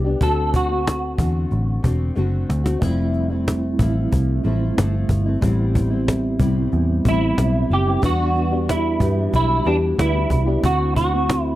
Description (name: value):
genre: indie pop, bedroom pop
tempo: 92 BPM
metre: 4/4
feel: straight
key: unclear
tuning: A4 = 438 Hz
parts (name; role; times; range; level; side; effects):
- semi-hollow electric guitar; melody; 0.0-2.5, 7.1-11.6 s; D4 to A4; -22 LUFS; right 2 dB; ensemble chorus, slapback echo, plate reverb
- nylon-string guitar; accompaniment; 0.0-11.6 s; A2 to G4; -25 LUFS; left 3 dB; lush chorus, vibrato effect
- vintage muted picked electric bass; bass; 0.0-11.6 s; E1 to G2; -21 LUFS; equal; none
- cajon; drums; 0.2-11.4 s; none; -22 LUFS; equal; none
- percussive tonewheel organ; accompaniment; 2.8-11.6 s; G3 to F#4; -25 LUFS; right 4 dB; chorus vibrato, fast rotary speaker
room: moderate studio reverb, RT60 0.6 s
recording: dark, warm production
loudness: -17 LUFS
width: side -15 dB against mid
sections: 0.0-11.6 A section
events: drum fill 2.2-2.8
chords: 0.2 D7; 2.8 Fmaj7; 5.4 Am7; 8.0 Em7; 10.6 D7